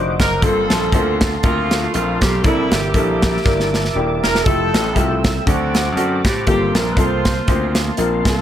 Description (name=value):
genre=uptempo gospel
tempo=119 BPM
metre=4/4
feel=swing 55% on 8ths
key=unclear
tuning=A4 = 439 Hz
part: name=warm baby grand piano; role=accompaniment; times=0.0-8.3 s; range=G2 to C5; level=-23 LUFS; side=left 4 dB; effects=none
part: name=mellow tonewheel organ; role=sustained chords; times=0.0-8.4 s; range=Bb3 to E6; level=-24 LUFS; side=right 3 dB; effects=slow rotary speaker, chorus vibrato
part: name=gritty slap bass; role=bass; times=0.0-8.4 s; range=Eb1 to A2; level=-21 LUFS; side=equal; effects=overdrive
part: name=clear saxophone section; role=melody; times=0.2-8.4 s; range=G3 to C5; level=-24 LUFS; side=left 2 dB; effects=none
part: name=warm alto saxophone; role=melody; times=0.2-8.4 s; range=E4 to C5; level=-24 LUFS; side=right 3 dB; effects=none
part: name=modern studio drum kit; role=drums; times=0.2-8.4 s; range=hi-hat, kick drum, snare drum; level=-18 LUFS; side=equal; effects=none
room=little or no reverb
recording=none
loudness=-14 LUFS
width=side -10 dB against mid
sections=0.0-8.4 A section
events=drum fill 3.5-4.5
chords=0.4 Gm11; 2.4 C13; 4.5 Fmaj9; 5.5 D7; 6.5 Gm11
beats=| 0.42 0.93 1.44 1.94 | 2.45 2.95 3.46 3.96 | 4.46 4.96 5.47 5.97 | 6.47 6.97 7.47 7.98